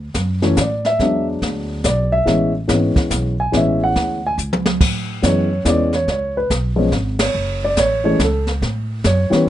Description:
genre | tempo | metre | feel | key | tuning
jazz piano trio | 142 BPM | 3/4 | swing 65% on 8ths | A major | A4 = 440 Hz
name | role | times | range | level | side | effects
upright bass | bass | 0.0-9.3 s | F#1 to A2 | -21 LUFS | right 1 dB | none
jazz brush drum kit | drums | 0.1-9.5 s | brushed snare drum, crash cymbal, hi-hat, kick drum, ride cymbal, snare drum, toms | -20 LUFS | equal | none
dark baby grand piano | melody | 0.4-9.5 s | E3 to G#5 | -17 LUFS | equal | none
room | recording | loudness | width
little or no reverb | rough home demo mix, nothing above 10.8 kHz | -15 LUFS | side -12 dB against mid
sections
0.0-4.8 A section; 4.8-9.5 B section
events
drum fill 4.4-4.8; band accent 7.1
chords
0.0 Dadd9; 1.0 E9; 2.3 Amaj9; 4.8 Amaj7; 6.1 C#7(no3); 7.4 F#m; 8.6 A

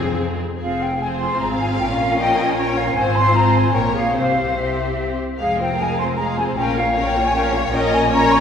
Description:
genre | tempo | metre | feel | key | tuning
quick classical-period movement for symphony orchestra | 141-158 BPM | 3/4 | rubato | F minor | A4 = 440 Hz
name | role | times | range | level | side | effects
rich studio violin section | melody | 0.0-8.4 s | Ab4 to F5 | -29 LUFS | left 4 dB | none
clear studio violin section | second line | 0.0-8.4 s | Ab4 to F5 | -26 LUFS | left 3 dB | none
clear studio viola section | accompaniment | 0.0-8.4 s | Ab3 to Bb4 | -23 LUFS | left 1 dB | none
clear studio double bass section | bass | 0.0-8.4 s | F1 to F2 | -26 LUFS | right 1 dB | none
rich studio cello section | bass | 0.0-8.4 s | F2 to F3 | -27 LUFS | equal | none
flute section | second line | 0.6-8.4 s | E5 to Db6 | -20 LUFS | left 1 dB | none
room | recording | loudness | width
wet scoring stage reverb, RT60 1.9 s | heard from further back in the room | -16 LUFS | side -7 dB against mid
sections
0.6-8.4 A section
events
none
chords
0.0 Fm; 1.8 Bbm; 3.0 Fm/Ab; 3.7 Bbm; 4.1 C; 5.4 Fm; 6.6 Bbm; 7.7 Bbmadd11

